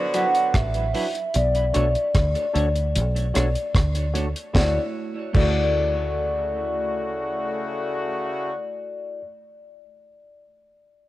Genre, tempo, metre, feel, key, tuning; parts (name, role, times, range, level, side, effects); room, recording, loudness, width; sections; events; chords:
lovers rock reggae; 75 BPM; 4/4; straight; D major; A4 = 439 Hz
vibraphone with soft mallets; melody; 0.0-9.2 s; D5 to F#5; -25 LUFS; left 1 dB; cassette tape, tape echo
clear horn section; second line; 0.0-8.5 s; C#3 to F#4; -30 LUFS; equal
barky tine electric piano; accompaniment; 0.1-9.2 s; D4 to D5; -33 LUFS; left 1 dB; overdrive, analog chorus
clean electric guitar; stabs; 0.1-9.3 s; F#3 to C#5; -33 LUFS; right 4 dB; warbly pitch drift, tape echo
deep reggae drum kit; drums; 0.1-5.6 s; crash cymbal, hi-hat, kick drum, rim click, snare drum; -23 LUFS; equal; cassette tape
deep dub fingered electric bass; bass; 0.5-9.2 s; A1 to D2; -23 LUFS; equal
small room ambience; home recording on cassette; -21 LUFS; side -16 dB against mid
0.0-4.5 A section; 4.5-7.7 B section
0.0 Cmaj9#11 (rootless); 1.3 Bm9; 4.5 Dmaj9